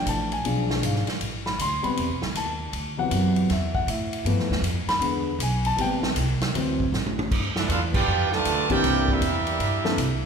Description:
jazz, big band swing; 157 BPM; 4/4; swing 65% on 8ths; A4 = 440 Hz
warm grand piano; accompaniment; 0.0-10.0 s; C3 to C6; -26 LUFS; left 2 dB
upright bass; bass; 0.0-10.3 s; G#1 to A2; -27 LUFS; right 1 dB
swinging big-band drum kit; drums; 0.1-10.1 s; crash cymbal, hi-hat, kick drum, ride cymbal, snare drum, toms; -28 LUFS; right 1 dB
clear trombone section; second line; 7.5-10.2 s; D3 to G4; -29 LUFS; right 6 dB
bright trumpet section; melody; 7.6-10.2 s; D4 to A5; -25 LUFS; right 4 dB
wet recital hall reverb, RT60 1.8 s; recorded in a church or concert hall; -22 LUFS; side -6 dB against mid
0.0-7.3 A section; 7.3-10.3 B section
grand piano solo 0.0-7.3; drum fill 6.9-7.3; band accent 7.9
0.4 G#dim7; 1.2 Am7; 2.7 D13; 4.3 G13; 5.0 E7; 5.8 Am7; 6.5 D7; 7.3 G13; 8.8 C9
0.06 0.44 0.82 | 1.21 1.59 1.97 2.35 | 2.73 3.11 3.49 3.88 | 4.26 4.64 5.02 5.40 | 5.78 6.16 6.55 6.93 | 7.31 7.69 8.07 8.45 | 8.83 9.22 9.60 9.98

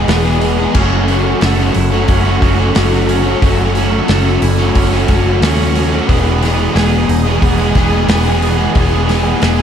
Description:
rock, shoegaze and dream pop; 90 BPM; 4/4; straight; A4 = 440 Hz
string machine, violas; sustained chords; 0.0-9.6 s; G#4 to E6; -22 LUFS; equal; ensemble chorus
twangy electric guitar; arpeggios; 0.0-9.6 s; G#3 to B4; -24 LUFS; right 12 dB; analog chorus, tape echo
overdriven semi-hollow guitar; riff; 0.0-9.6 s; E2 to G#4; -17 LUFS; left 11 dB; lush chorus
raw garage guitar; riff; 0.0-9.6 s; E2 to G#4; -17 LUFS; right 10 dB; overdrive, reverse reverb
vintage muted fingered electric bass; bass; 0.0-9.6 s; E1 to D#2; -16 LUFS; equal
loose indie drum kit; drums; 0.1-9.6 s; crash cymbal, hi-hat, kick drum, snare drum; -18 LUFS; equal
studio ambience; dark, warm production; -10 LUFS; side -8 dB against mid
0.0-9.6 A section
0.0 Emaj7; 0.8 F#m7; 6.1 Emaj7
0.08 | 0.75 1.42 2.08 2.75 | 3.42 4.09 4.75 5.42 | 6.09 6.76 7.42 8.09 | 8.76 9.42

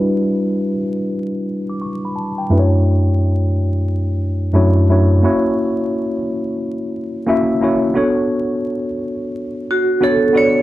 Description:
lo-fi hip hop; 88 BPM; 4/4; swing 61% on 16ths; E dorian; A4 = 439 Hz
mellow tine electric piano; accompaniment; 0.0-10.6 s; F#2 to D6; -15 LUFS; equal; medium stereo tremolo, cassette tape, low-pass filter
vibraphone with hard mallets; melody; 9.7-10.6 s; F#4 to C#5; -14 LUFS; right 2 dB; low-pass filter
moderate small room reverb, RT60 0.6 s; vinyl crackle; -15 LUFS; side -15 dB against mid
0.0-10.6 A section
filter sweep on tine electric piano 0.0-10.6
0.0 Em7; 2.5 Dmaj7/F#; 5.2 F#7; 8.0 Bm7
0.46 1.14 1.82 | 2.50 3.18 3.87 4.55 | 5.23 5.91 6.59 7.28 | 7.96 8.64 9.32 10.00

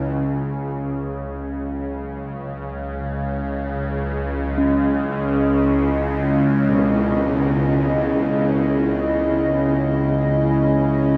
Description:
dark ambient drone; 57 BPM; 4/4; straight; C# minor; A4 = 440 Hz
dark analog pad; sustained chords; 0.0-11.2 s; C#4 to D#5; -26 LUFS; equal; chorus
quartz singing bowl; arpeggios; 0.0-10.9 s; G#3 to C#4; -27 LUFS; equal; delay
bowed-like drone; drone; 0.0-11.2 s; C#2 to C#3; -24 LUFS; equal; built-in reverb, phaser
tam-tam; percussion; 6.7-6.9 s; -31 LUFS; equal
wet huge ambient reverb, RT60 7.6 s; -21 LUFS; mono
0.3-11.2 A section
fade-in on analog synth pad 0.3-11.2
0.3 C#madd9
| 0.30 1.38 2.45 3.52 | 4.58 5.64 6.70 7.75 | 8.80 9.86 10.91

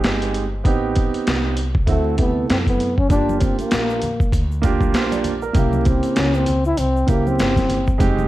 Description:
hip hop, jazz-hop; 98 BPM; 4/4; swing 58% on 16ths; A4 = 439 Hz
breathy trombone; melody; 0.0-8.2 s; F3 to E4; -22 LUFS; left 2 dB
dark baby grand piano; accompaniment; 0.0-8.3 s; C3 to D5; -22 LUFS; right 5 dB
upright bass; bass; 0.0-8.3 s; F1 to F#2; -23 LUFS; equal
boom bap sampler-style drum kit; drums; 0.0-8.2 s; hi-hat, kick drum, snare drum; -20 LUFS; equal
egg shaker and congas; percussion; 3.1-8.3 s; -32 LUFS; left 2 dB
light reverb, studio reverb; dark, warm production, vinyl crackle; -16 LUFS; side -15 dB against mid
0.0-8.3 A section
trombone solo 0.0-8.3
0.0 Fm9; 0.7 Am7b5; 1.9 D7; 3.1 Gm7; 5.6 C7b9
0.04 | 0.65 1.27 1.88 2.49 | 3.10 3.71 4.33 4.94 | 5.55 6.16 6.78 7.39 | 8.00

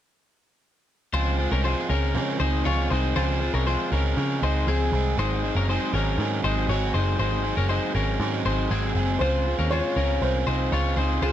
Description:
indie pop; 119 BPM; 4/4; straight; A4 = 440 Hz
overdriven electric guitar; accompaniment; 1.1-11.3 s; Ab2 to Ab4; -28 LUFS; right 5 dB
twelve-string electric guitar; arpeggios; 1.1-11.3 s; C4 to Db5; -28 LUFS; left 7 dB
vintage muted picked electric bass; bass; 1.1-11.3 s; Gb1 to Db3; -25 LUFS; equal
dark upright piano; melody; 9.2-11.3 s; Ab4 to Db5; -28 LUFS; left 1 dB; slapback echo, plate reverb
light reverb; -22 LUFS; side -11 dB against mid
1.1-9.2 A section; 9.2-11.3 B section
1.1 Dbmaj7; 5.2 Ab7; 9.2 Dbmaj7
| 1.14 1.65 2.15 2.66 | 3.16 3.67 4.17 4.67 | 5.18 5.68 6.19 6.69 | 7.19 7.70 8.20 8.71 | 9.21 9.71 10.21 10.72 | 11.22

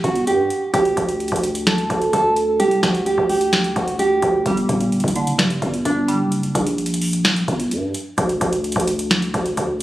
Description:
hip hop, trap; 129 BPM; 4/4; half-time; G harmonic minor; A4 = 437 Hz
nylon-string guitar; melody; 0.0-4.4 s; F#4 to A4; -19 LUFS; right 2 dB; digital delay
growling 808-style bass; bass; 0.0-9.8 s; F#1 to G2; -21 LUFS; equal
booming analog drum machine; drums; 0.0-9.8 s; hi-hat, kick drum, snare drum; -22 LUFS; equal
glassy wavetable pluck; accompaniment; 4.5-6.3 s; G2 to D4; -21 LUFS; equal; chorus
light reverb, digital ambience; recorded on a phone in the room, studio reverb, compression; -17 LUFS; side -15 dB against mid
0.0-9.8 A section
0.0 N.C.; 0.7 Dsus4; 4.5 Gm; 8.2 N.C.
0.27 | 0.74 1.20 1.67 2.13 | 2.60 3.06 3.53 3.99 | 4.46 4.92 5.39 5.85 | 6.32 6.78 7.25 7.71 | 8.18 8.64 9.11 9.57

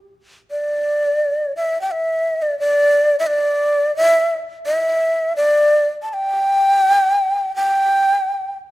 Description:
japanese traditional; 76-90 BPM; 2/4; rubato; A4 = 440 Hz
breathy shakuhachi; solo; 0.5-8.5 s; D5 to A5; -15 LUFS; equal
light reverb; close, detailed microphones; -15 LUFS; side -17 dB against mid
0.5-8.7 A section
| 0.48 1.20 | 1.89 2.58 | 3.25 3.94 | 4.65 5.37 | 6.10 6.83 | 7.55 8.25

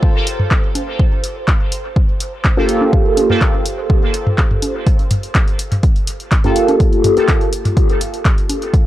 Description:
dub techno; 124 BPM; 4/4; straight; G minor; A4 = 437 Hz
electronic kick drum; drums; 0.0-8.8 s; -14 LUFS; equal
bubbling stepped-filter texture; texture; 0.0-4.9 s; C5; -30 LUFS; right 2 dB; chorus, built-in reverb, sidechain pumping
punchy analog drum machine; drums; 0.3-8.8 s; handclaps, hi-hat; -22 LUFS; left 1 dB; dub echo
electronic toms and congas; percussion; 0.4-8.6 s; -19 LUFS; equal; sidechain pumping on toms, sidechain pumping on perc, dub echo
resonant sweep polysynth; stabs; 2.6-3.4, 6.4-7.3 s; Bb3 to A4; -18 LUFS; equal; chorus, phaser, sidechain pumping, dub echo
little or no reverb; dry, gritty hardware recording, transformer saturation; -13 LUFS; side -14 dB against mid
0.0-4.9 A section; 4.9-8.9 A section
0.0 Gm9
0.03 0.51 | 0.99 1.48 1.96 2.45 | 2.93 3.41 3.90 4.38 | 4.87 5.35 5.83 6.32 | 6.80 7.29 7.77 8.25 | 8.74

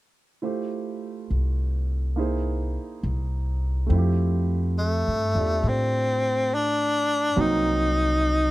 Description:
jazz ballad; 70 BPM; 4/4; swing 66% on 8ths; F major; A4 = 440 Hz
warm grand piano; accompaniment; 0.4-8.5 s; Gb3 to Eb5; -30 LUFS; right 4 dB
upright bass; bass; 1.3-8.5 s; C2 to A2; -24 LUFS; equal
breathy tenor saxophone; melody; 4.8-8.5 s; A3 to Eb4; -22 LUFS; left 1 dB
little or no reverb; close, detailed microphones; -22 LUFS; side -17 dB against mid
0.4-3.9 A section; 3.9-8.5 B section
0.4 Fmaj7; 2.2 C7alt; 3.9 Fmaj9; 7.3 Cm7b5
| 0.43 1.31 2.17 3.03 | 3.90 4.77 5.63 6.49 | 7.35 8.20

